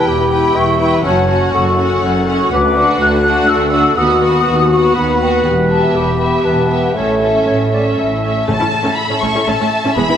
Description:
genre	cinematic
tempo	122 BPM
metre	3/4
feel	straight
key	unclear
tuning	A4 = 436 Hz
part	warm symphonic violin section	melody	0.0-10.2 s	E5 to C#6	-21 LUFS	left 3 dB	none
part	clear clarinet	second line	0.0-8.5 s	F#4 to E5	-20 LUFS	left 2 dB	none
part	mellow large flute ensemble	second line	0.0-8.0 s	E5 to F#6	-17 LUFS	left 1 dB	none
part	warm symphonic violin section	second line	0.0-10.2 s	F#4 to E5	-23 LUFS	left 2 dB	none
part	warm symphonic viola section	accompaniment	0.0-10.1 s	G#3 to E4	-20 LUFS	right 1 dB	none
part	warm French horn section	sustained chords	0.0-8.2 s	A3 to A4	-18 LUFS	left 3 dB	none
part	warm symphonic double bass section	bass	0.0-10.0 s	E1 to D#2	-21 LUFS	right 3 dB	none
part	rich symphonic cello section	bass	0.1-10.1 s	D2 to A2	-21 LUFS	right 3 dB	none
part	timpani	percussion	8.5-9.2 s	A2	-26 LUFS	equal	none
room	wet scoring stage reverb, RT60 2.2 s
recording	none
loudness	-11 LUFS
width	side -9 dB against mid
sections	0.0-8.5 A section; 8.5-10.2 B section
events	none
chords	0.0 Em; 1.0 F#m; 2.5 D; 4.0 B/D#; 5.5 Em; 7.0 A

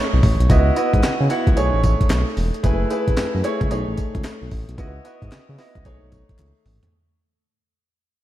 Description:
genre	R&B, new jack swing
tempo	112 BPM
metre	4/4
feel	swing 64% on 16ths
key	unclear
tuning	A4 = 440 Hz
part	clear baby grand piano	accompaniment	0.0-6.9 s	A3 to F#5	-23 LUFS	right 1 dB	lush chorus
part	smooth synth bass	bass	0.1-6.8 s	E1 to C#3	-20 LUFS	equal	none
part	breakbeat sampler-style drum kit	drums	0.2-6.9 s	handclaps, hi-hat, kick drum, snare drum, tambourine, toms	-20 LUFS	equal	none
part	group handclap	percussion	1.0-6.5 s	none	-43 LUFS	left 3 dB	none
room	moderate lush hall reverb, RT60 1.8 s, small room ambience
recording	dreamy mix soaked in reverb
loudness	-16 LUFS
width	side -13 dB against mid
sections	0.0-6.9 A section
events	fade-out 0.0-6.9; drum fill 6.4-6.9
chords	0.5 C#m11; 1.6 B13; 2.6 F#m11; 3.7 B13; 4.8 C#m11; 5.9 B13

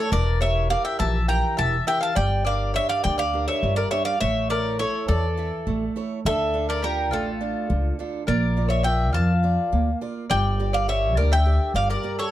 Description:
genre	greek folk, Greek bouzouki band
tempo	206 BPM (eighths)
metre	7/8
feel	straight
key	D harmonic minor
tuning	A4 = 441 Hz
part	Greek bouzouki	melody	0.0-12.3 s	A4 to Bb5	-26 LUFS	equal	plate reverb
part	mandolin	second line	0.0-12.3 s	F4 to G5	-28 LUFS	left 3 dB	none
part	picked steel-string acoustic guitar	accompaniment	0.0-12.3 s	D3 to E5	-29 LUFS	right 5 dB	none
part	upright bass	bass	0.1-11.9 s	E1 to F2	-23 LUFS	equal	none
room	light reverb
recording	dark, warm production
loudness	-20 LUFS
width	side -13 dB against mid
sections	0.0-6.2 A section; 6.2-12.3 B section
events	none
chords	0.1 Edim; 2.2 Gm; 4.2 A; 6.2 Dm; 8.3 Bb; 10.3 Gm

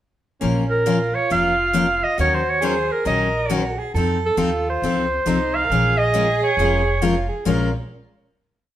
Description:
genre	acoustic string swing (jazz manouche)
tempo	136 BPM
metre	4/4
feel	swing 63% on 8ths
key	Bb minor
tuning	A4 = 440 Hz
part	warm soprano saxophone	second line	0.4-7.7 s	Db4 to Bb4	-25 LUFS	right 3 dB	none
part	picked steel-string acoustic guitar	accompaniment	0.4-7.7 s	Bb2 to Bb4	-23 LUFS	left 4 dB	none
part	upright bass	bass	0.4-7.7 s	F1 to F2	-25 LUFS	equal	none
part	clear clarinet	melody	0.7-7.7 s	A4 to F5	-20 LUFS	right 2 dB	none
room	wet stone room reverb, RT60 0.9 s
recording	band playing live in one room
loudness	-17 LUFS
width	side -12 dB against mid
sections	0.4-7.5 A section; 7.5-8.8 final chord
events	none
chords	0.4 Bbm; 2.2 Ebm7; 3.9 F7; 5.7 Bbm7

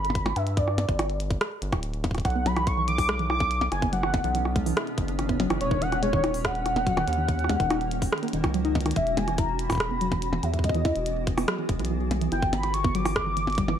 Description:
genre	IDM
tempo	143 BPM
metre	4/4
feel	straight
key	unclear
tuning	A4 = 441 Hz
part	warm velvety synth lead	melody	0.0-13.8 s	C#5 to D6	-28 LUFS	equal	chorus, tape echo
part	round analog bass	bass	0.0-13.8 s	D1 to G2	-29 LUFS	equal	none
part	glitchy drum kit	drums	0.0-13.8 s	hi-hat, percussion blips, rim click	-30 LUFS	equal	small room ambience
part	electronic kick drum	drums	0.2-13.7 s	none	-27 LUFS	equal	small room ambience
part	granular cloud pad	sustained chords	3.6-13.8 s	B2 to A4	-34 LUFS	equal	built-in reverb, vintage 12-bit sampler grit
part	warbly dusty pluck	arpeggios	2.4-13.8 s	D#3 to E4	-31 LUFS	right 1 dB	chorus, tape echo
room	light reverb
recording	none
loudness	-23 LUFS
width	side -9 dB against mid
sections	0.0-9.0 A section; 9.0-13.8 A section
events	drum fill 8.8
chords	0.0 G; 2.2 Bmadd9; 5.6 D#m7; 9.0 Eadd9; 12.3 Gadd9

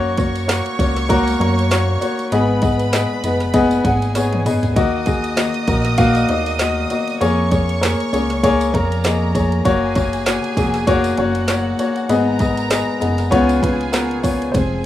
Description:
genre	piano-driven pop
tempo	98 BPM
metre	4/4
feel	swing 56% on 16ths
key	F# major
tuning	A4 = 441 Hz
part	warm studio violin section	second line	0.0-14.9 s	F#4 to D#6	-26 LUFS	right 3 dB	digital delay
part	warm upright piano	accompaniment	0.0-14.9 s	G#2 to F#5	-17 LUFS	left 2 dB	plate reverb
part	chorused synth bass	bass	0.0-14.9 s	E#1 to F#2	-22 LUFS	right 1 dB	none
part	deep house drum kit	drums	0.2-14.7 s	handclaps, hi-hat, kick drum, ride cymbal, snare drum, toms	-21 LUFS	right 1 dB	none
part	tambourine	percussion	0.2-14.7 s	none	-37 LUFS	right 12 dB	none
room	light reverb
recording	rough home demo mix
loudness	-15 LUFS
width	side -13 dB against mid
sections	0.0-14.5 A section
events	drum fill 4.2-4.8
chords	0.0 F#; 2.3 G#m; 4.8 D#m; 7.2 A#m7; 9.7 F#; 12.1 G#m; 13.3 C#7

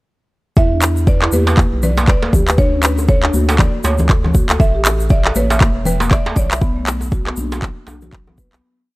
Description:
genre	afro house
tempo	119 BPM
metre	4/4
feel	swing 59% on 16ths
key	E dorian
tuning	A4 = 440 Hz
part	buzzing marimba with medium hard mallets	melody	0.6-7.1 s	B4 to E5	-24 LUFS	equal	analog delay
part	marimba with soft mallets	arpeggios	0.6-8.6 s	F#3 to G5	-23 LUFS	equal	sidechain pumping, low-pass filter, analog delay
part	round analog bass	bass	0.6-8.6 s	E1 to E2	-19 LUFS	equal	tube saturation, sidechain pumping
part	electronic kick drum	drums	0.6-8.5 s	none	-14 LUFS	equal	none
part	egg shaker	percussion	0.6-8.6 s	none	-30 LUFS	left 2 dB	none
part	electronic handclaps	drums	0.8-8.6 s	none	-18 LUFS	equal	none
part	djembe	percussion	1.2-8.6 s	none	-23 LUFS	right 2 dB	none
part	congas	percussion	1.3-8.5 s	none	-23 LUFS	left 2 dB	none
room	little or no reverb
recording	dry, gritty hardware recording, transformer saturation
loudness	-12 LUFS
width	side -20 dB against mid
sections	0.6-8.6 groove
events	filter sweep on marimba 0.6-8.6; fade-out 5.9-8.6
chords	0.6 Em7; 2.6 Dmaj7; 4.6 A5; 6.6 Bm

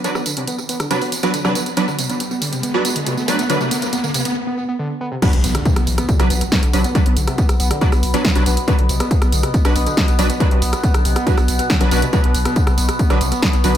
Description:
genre	driving peak-time techno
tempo	139 BPM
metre	4/4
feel	straight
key	B phrygian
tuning	A4 = 440 Hz
part	rave stab	stabs	0.0-13.7 s	F#3 to B4	-22 LUFS	right 1 dB	chorus, built-in reverb, sidechain pumping, analog delay
part	punchy analog drum machine	drums	0.0-13.8 s	crash cymbal, hi-hat, rim click, snare drum, tambourine	-23 LUFS	right 1 dB	sidechain pumping on hats, studio reverb, sidechain pumping on perc, sidechain pumping on cymbals, analog delay
part	riser and impact	sound effects	0.1-6.9 s	none	-28 LUFS	equal	none
part	overdriven synth lead	riff	0.2-13.8 s	C3 to B3	-24 LUFS	equal	tube saturation, sidechain pumping, tape echo
part	overtone-sweeping drone	drone	6.0-13.8 s	B2 to B3	-26 LUFS	left 1 dB	chorus, built-in reverb, sidechain pumping
part	electronic kick drum	drums	5.2-13.5 s	none	-17 LUFS	equal	studio reverb
part	saturated sub bass	bass	5.3-13.7 s	B1	-20 LUFS	equal	overdrive, sidechain pumping, low-pass filter
room	light reverb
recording	echo-heavy mix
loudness	-15 LUFS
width	side -10 dB against mid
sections	0.0-5.2 A section; 5.2-13.8 B section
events	build-up 0.0-5.2; riser 0.1-4.4; filter sweep on analog synth lead 0.0-5.2; break 4.4-5.2; drop 5.2-13.8; impact 5.2-7.0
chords	0.0 Bm

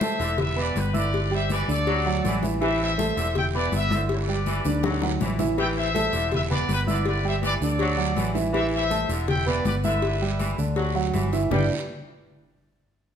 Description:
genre	latin, salsa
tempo	162 BPM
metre	4/4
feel	straight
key	G major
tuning	A4 = 440 Hz
part	bright trumpet section	melody	0.0-11.7 s	G4 to G5	-28 LUFS	left 2 dB	none
part	dark concert grand piano	accompaniment	0.0-11.7 s	D3 to E6	-28 LUFS	right 4 dB	none
part	congas	percussion	0.0-11.6 s	none	-31 LUFS	left 3 dB	none
part	cowbell and bongos	percussion	0.0-11.6 s	none	-32 LUFS	left 5 dB	none
part	guiro	percussion	0.0-11.6 s	none	-39 LUFS	right 6 dB	none
part	bright saxophone section	second line	0.2-11.6 s	D3 to G3	-33 LUFS	left 2 dB	none
part	fingered electric bass	bass	0.2-11.7 s	E1 to D2	-27 LUFS	equal	none
room	wet large studio reverb, RT60 1.3 s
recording	none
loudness	-22 LUFS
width	side -8 dB against mid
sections	0.0-11.5 A section; 11.5-13.0 B section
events	drum fill 4.7-5.6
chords	0.4 Em7; 1.1 G6; 1.9 D; 2.6 Am; 3.4 Em7; 4.1 G6; 4.8 D; 5.6 Am; 6.3 Em7; 7.1 G6; 7.8 D; 8.5 Am; 9.3 Em7; 10.0 G6; 10.8 D; 11.5 G6

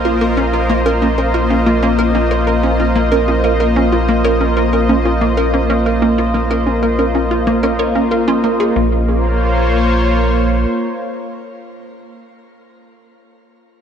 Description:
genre	ambient, sequencer-driven space music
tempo	93 BPM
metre	4/4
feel	straight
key	Bb minor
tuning	A4 = 437 Hz
part	lush unison pad	sustained chords	0.0-12.1 s	Bb3 to Eb5	-16 LUFS	equal	chorus, shimmer reverb
part	wide unison pluck	arpeggios	0.0-9.1 s	Bb3 to F5	-21 LUFS	right 2 dB	auto-pan, analog delay, shimmer reverb
part	hollow square pluck	riff	0.0-9.1 s	Bb3 to Bb4	-19 LUFS	right 1 dB	lush chorus, analog delay, shimmer reverb
part	round analog bass	bass	0.0-10.7 s	Bb1	-18 LUFS	equal	none
part	bubbling stepped-filter texture	texture	0.0-8.8 s	Bb4	-28 LUFS	right 4 dB	none
room	wet plate reverb, RT60 2.6 s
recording	dark, warm production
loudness	-12 LUFS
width	side -8 dB against mid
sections	0.0-8.8 A section; 8.8-11.3 B section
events	filter sweep on synth arpeggio sound 0.0-8.8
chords	0.0 Bbm

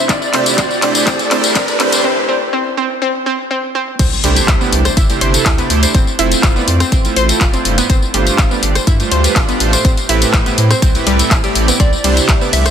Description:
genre	progressive house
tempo	123 BPM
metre	4/4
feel	straight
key	C major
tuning	A4 = 439 Hz
part	plucky unison lead	melody	0.0-2.0, 11.8-12.7 s	D5 to E5	-21 LUFS	equal	sidechain pumping, ping-pong delay
part	analog pluck	arpeggios	0.0-12.7 s	G3 to C5	-19 LUFS	equal	chorus, sidechain pumping, dub echo
part	riser and impact	sound effects	0.0-5.9 s	none	-22 LUFS	equal	none
part	round analog bass	bass	0.1-12.7 s	F1 to A2	-17 LUFS	equal	sidechain pumping, high-pass filter
part	electronic kick drum	drums	0.1-12.4 s	none	-14 LUFS	equal	none
part	house drum kit	drums	0.1-12.7 s	crash cymbal, handclaps, hi-hat, ride cymbal, rim click, tambourine	-16 LUFS	left 2 dB	soft clipping on snare, sidechain pumping on hats, sidechain pumping on perc, sidechain pumping on cymbals
part	soft supersaw	stabs	0.3-12.5 s	G2 to D5	-18 LUFS	right 4 dB	sidechain pumping, dub echo
part	soft synth bell	second line	11.8-12.7 s	D5 to E5	-24 LUFS	left 1 dB	chorus, phaser, sidechain pumping
room	moderate lush hall reverb, RT60 2.1 s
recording	dense, heavily limited modern master, high-pass filter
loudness	-11 LUFS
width	side -8 dB against mid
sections	0.0-4.0 A section; 4.0-12.7 B section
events	build-up 0.0-4.0; drum fill 0.0-2.0; riser 0.0-2.0; break 2.0-4.0; drop 4.0-12.7; impact 4.0-5.9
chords	0.1 Gsus24; 2.0 N.C.; 4.0 C69; 5.9 Fmaj7; 7.9 G9sus4; 9.8 Am9; 11.8 C69

